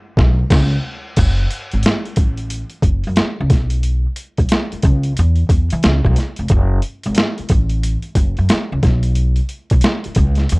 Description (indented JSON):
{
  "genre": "R&B, neo-soul",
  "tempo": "90 BPM",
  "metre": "4/4",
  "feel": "swing 63% on 16ths",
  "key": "F# minor",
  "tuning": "A4 = 440 Hz",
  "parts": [
    { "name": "upright bass", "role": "bass", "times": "0.2-10.6 s", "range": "E#1 to E3", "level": "-16 LUFS", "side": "equal", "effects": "none" },
    { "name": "boom bap sampler-style drum kit", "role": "drums", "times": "0.2-10.6 s", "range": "crash cymbal, hi-hat, kick drum, snare drum", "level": "-16 LUFS", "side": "equal", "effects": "overdrive" }
  ],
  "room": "little or no reverb",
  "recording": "worn, warbling old tape, cassette tape, warbly pitch drift",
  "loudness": "-14 LUFS",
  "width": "side -29 dB against mid",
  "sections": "0.0-1.2 A section; 1.2-10.6 B section",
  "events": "band accent 0.0-1.2; silent gap 0.5-1.2",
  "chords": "none"
}